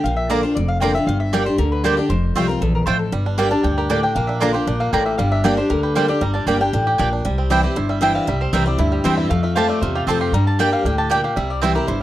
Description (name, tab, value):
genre	bluegrass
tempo	233 BPM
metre	4/4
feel	straight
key	G dorian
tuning	A4 = 440 Hz
part	mandolin	melody	0.0-12.0 s	F4 to C6	-24 LUFS	left 2 dB	none
part	picked steel-string acoustic guitar	accompaniment	0.0-12.0 s	E2 to G4	-20 LUFS	left 2 dB	none
part	upright bass	bass	0.0-12.0 s	F1 to G2	-22 LUFS	equal	none
part	mandolin	stabs	0.3-11.7 s	A3 to Bb5	-22 LUFS	right 6 dB	none
part	bluegrass banjo	melody	3.1-12.0 s	G3 to G4	-26 LUFS	right 5 dB	none
room	studio reverb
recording	dry, close 1970s-style studio recording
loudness	-16 LUFS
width	side -14 dB against mid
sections	0.0-7.2 A section; 7.2-12.0 B section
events	none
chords	0.0 Bb; 1.1 Gm; 2.1 Fadd9; 3.1 Gm; 4.2 Bb; 5.2 Gm; 7.2 C; 9.3 F; 10.3 Gm; 11.4 C